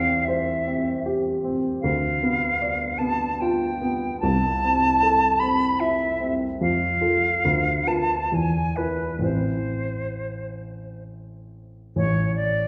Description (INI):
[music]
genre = classical, romantic duo for flute and grand piano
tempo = 64-79 BPM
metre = 3/4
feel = rubato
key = A minor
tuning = A4 = 440 Hz
[part]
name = silver concert flute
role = melody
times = 0.0-12.7 s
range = B4 to B5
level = -26 LUFS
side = equal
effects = none
[part]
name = dark baby grand piano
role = accompaniment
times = 0.0-12.7 s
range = A1 to D5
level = -27 LUFS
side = equal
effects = none
[sound]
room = wet recital hall reverb, RT60 1.5 s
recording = heard from further back in the room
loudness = -23 LUFS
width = mono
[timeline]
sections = 0.0-11.9 A section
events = none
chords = 0.0 C/E; 1.8 Bdim/D; 4.2 Am/C; 6.6 F; 7.4 Bdim/D; 8.3 E; 9.2 Am; 11.9 A